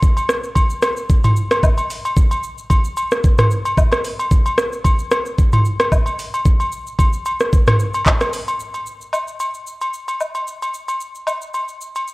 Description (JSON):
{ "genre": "amapiano", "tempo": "112 BPM", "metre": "4/4", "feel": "swing 55% on 16ths", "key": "none", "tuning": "none", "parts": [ { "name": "afro-pop drum kit", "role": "drums", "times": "0.0-12.1 s", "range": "handclaps, hi-hat, kick drum, rim click, shaker, toms", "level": "-15 LUFS", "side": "equal", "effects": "none" }, { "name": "agogo bells and woodblock", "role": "percussion", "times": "0.2-12.1 s", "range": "none", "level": "-22 LUFS", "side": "left 1 dB", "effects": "none" } ], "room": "light reverb", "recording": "worn, warbling old tape, cassette tape, warbly pitch drift", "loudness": "-15 LUFS", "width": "side -22 dB against mid", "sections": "0.0-8.6 A section; 8.6-12.1 B section", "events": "drop 0.0-8.6", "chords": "none" }